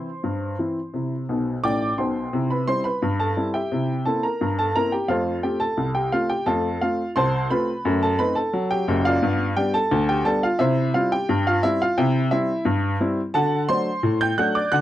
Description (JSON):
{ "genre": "ragtime piano", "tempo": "87 BPM", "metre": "2/4", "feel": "straight", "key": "C major", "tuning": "A4 = 442 Hz", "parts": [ { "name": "warm upright piano", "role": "solo", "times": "0.0-14.8 s", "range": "F#1 to G6", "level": "-20 LUFS", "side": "equal", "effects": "none" } ], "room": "little or no reverb", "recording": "dry, close 1970s-style studio recording", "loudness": "-20 LUFS", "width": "side -13 dB against mid", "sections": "0.0-2.3 A section; 2.3-14.8 A section", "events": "upright piano fill 1.3-2.3", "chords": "0.0 C; 3.7 C7; 5.1 F; 7.8 F#dim7; 9.2 G7; 10.6 C; 13.3 D7" }